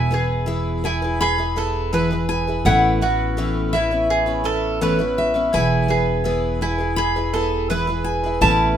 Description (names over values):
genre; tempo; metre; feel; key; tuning
acoustic folk duo or small band; 83 BPM; 4/4; straight; unclear; A4 = 440 Hz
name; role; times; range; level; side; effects
picked steel-string acoustic guitar; melody; 0.0-8.8 s; E5 to B5; -22 LUFS; left 1 dB; none
picked twelve-string acoustic guitar; accompaniment; 0.0-8.8 s; A2 to B4; -23 LUFS; left 1 dB; none
mandolin; arpeggios; 0.0-8.8 s; E4 to B4; -24 LUFS; right 4 dB; none
upright bass; bass; 0.0-8.8 s; E1 to A1; -24 LUFS; right 1 dB; none
room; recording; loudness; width
light reverb; minimal, uncompressed stereo recording; -18 LUFS; side -9 dB against mid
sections
0.0-8.8 A section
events
none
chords
0.0 E; 2.7 Aadd9; 5.5 E